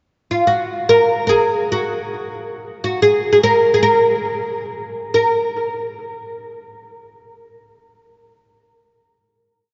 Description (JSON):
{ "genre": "alpine folk", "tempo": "142 BPM", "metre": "3/4", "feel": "swing 54% on 8ths", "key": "unclear", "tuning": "A4 = 440 Hz", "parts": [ { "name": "oud", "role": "solo", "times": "0.3-5.4 s", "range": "E#4 to A#4", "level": "-18 LUFS", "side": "equal", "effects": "analog delay" } ], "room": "wet cathedral reverb, RT60 5.0 s", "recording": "in a vast, echoing space, nothing above 7.6 kHz", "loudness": "-17 LUFS", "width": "mono", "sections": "0.1-5.1 A section; 5.1-6.4 final note", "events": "none", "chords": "none" }